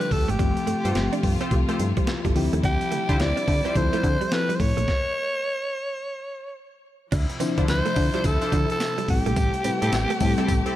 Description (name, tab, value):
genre	R&B, new jack swing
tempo	107 BPM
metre	4/4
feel	swing 62% on 16ths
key	D minor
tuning	A4 = 436 Hz
part	raspy alto saxophone	melody	0.0-10.8 s	G4 to D5	-27 LUFS	equal	none
part	mellow FM electric piano	accompaniment	0.0-10.8 s	F3 to C5	-28 LUFS	left 4 dB	chorus
part	rich studio string section	sustained chords	0.0-10.8 s	C3 to G4	-33 LUFS	left 1 dB	none
part	direct-recorded clean electric guitar	riff	0.0-10.5 s	F3 to D4	-32 LUFS	right 6 dB	ensemble chorus
part	breakbeat sampler-style drum kit	drums	0.0-10.8 s	crash cymbal, hi-hat, kick drum, snare drum, tambourine	-26 LUFS	equal	none
part	solid FM bass	bass	0.1-10.6 s	G1 to D3	-25 LUFS	equal	none
part	funky polysynth comp	stabs	0.8-4.1, 7.6-10.8 s	C4 to C5	-33 LUFS	left 1 dB	chorus
room	digital ambience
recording	none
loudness	-21 LUFS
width	side -13 dB against mid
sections	0.0-7.1 A section; 7.1-10.8 B section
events	stop 4.9-7.1; FM electric piano fill 10.5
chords	0.4 G9sus4; 2.4 Dm11; 4.9 N.C.; 7.1 Dm9; 9.1 Am7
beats	| 0.39 0.95 1.51 2.08 | 2.64 3.20 3.76 4.32 | 4.88 5.44 6.00 6.56 | 7.12 7.68 8.24 8.80 | 9.37 9.93 10.49